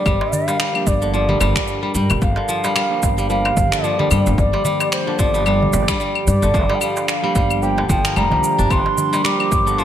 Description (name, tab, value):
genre	organic downtempo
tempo	111 BPM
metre	4/4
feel	swing 57% on 16ths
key	G minor pentatonic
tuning	A4 = 439 Hz
part	mellow bansuri	melody	0.0-9.8 s	C5 to D6	-21 LUFS	equal	ping-pong delay
part	tine electric piano	accompaniment	0.0-9.8 s	F3 to G4	-27 LUFS	right 4 dB	medium stereo tremolo, sidechain pumping, ping-pong delay
part	airy breathy pad	sustained chords	0.0-9.8 s	G3 to D5	-29 LUFS	right 1 dB	chorus, sidechain pumping
part	kora	arpeggios	0.0-9.8 s	D3 to D4	-23 LUFS	left 1 dB	ping-pong delay
part	upright bass	bass	0.1-9.8 s	F1 to G2	-21 LUFS	equal	tube saturation, sidechain pumping
part	electronic claves, shaker and finger snaps	drums	0.1-9.8 s	none	-24 LUFS	left 1 dB	small room ambience, gated reverb
part	electronic kick drum	drums	0.1-9.6 s	none	-21 LUFS	equal	overdrive, small room ambience
part	darbuka	percussion	0.2-9.6 s	none	-27 LUFS	right 2 dB	none
room	moderate plate reverb, RT60 1.8 s, small room ambience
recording	bright 1980s-style digital production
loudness	-15 LUFS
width	side -10 dB against mid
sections	0.1-9.8 A section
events	none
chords	0.1 Gm7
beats	| 0.06 0.60 1.14 1.68 | 2.22 2.76 3.30 3.84 | 4.38 4.92 5.46 6.00 | 6.54 7.08 7.62 8.16 | 8.71 9.25 9.79